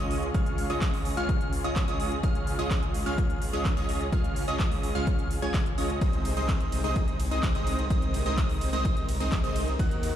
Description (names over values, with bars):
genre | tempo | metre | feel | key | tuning
EDM, festival progressive house | 127 BPM | 4/4 | straight | Db major | A4 = 445 Hz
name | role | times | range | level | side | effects
dark studio string section | sustained chords | 0.0-10.2 s | C3 to Bb4 | -39 LUFS | left 1 dB | sidechain pumping
plucky unison lead | arpeggios | 0.0-10.1 s | Eb6 to Ab6 | -36 LUFS | right 2 dB | sidechain pumping, tape echo
supersaw stab | riff | 0.0-10.1 s | Ab3 to Ab5 | -32 LUFS | equal | sidechain pumping, tape echo
detuned saw bass | bass | 0.0-10.1 s | C2 to Eb2 | -32 LUFS | equal | sidechain pumping
big-room dance drum kit | drums | 0.1-10.1 s | handclaps, hi-hat, ride cymbal | -39 LUFS | right 1 dB | overdrive
electronic kick drum | drums | 0.3-9.9 s | none | -28 LUFS | equal | overdrive
room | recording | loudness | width
digital ambience | played on a big sound system in a bare room, large studio reverb | -25 LUFS | side -10 dB against mid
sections
0.0-10.2 A section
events
none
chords
0.0 Db; 6.0 Ab/C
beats
| 0.34 0.82 1.29 1.76 | 2.23 2.71 3.18 3.65 | 4.12 4.60 5.07 5.54 | 6.01 6.49 6.96 7.43 | 7.90 8.38 8.85 9.32 | 9.79